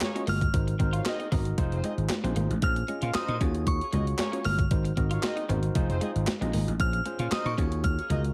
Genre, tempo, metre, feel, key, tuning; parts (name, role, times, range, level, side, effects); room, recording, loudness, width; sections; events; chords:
early-eighties boogie funk; 115 BPM; 4/4; straight; Bb minor; A4 = 439 Hz
glassy synth bell; melody; 0.0-8.3 s; Db6 to F6; -36 LUFS; equal; chorus
warm horn section; second line; 0.0-8.2 s; Ab3 to F5; -40 LUFS; equal
overdriven tine electric piano; accompaniment; 0.0-8.3 s; Db4 to Eb5; -38 LUFS; equal
electric guitar at the edge of break-up; riff; 0.0-8.2 s; Ab3 to F4; -40 LUFS; equal; analog chorus
clean 12-bit digital drum machine; drums; 0.0-8.3 s; handclaps, hi-hat, kick drum, snare drum; -32 LUFS; equal; gated reverb
congas; percussion; 0.0-8.2 s; -39 LUFS; equal
vintage slap bass; bass; 0.3-8.3 s; F1 to Bb2; -31 LUFS; equal
little or no reverb; -28 LUFS; mono
0.0-8.3 A section
0.0 Ebm11; 0.5 Ab7; 1.6 Fm7; 2.6 Bbm9; 3.4 Ebm11; 4.7 Ab7; 5.8 Fm7; 6.8 Bbm9; 7.6 Ebm11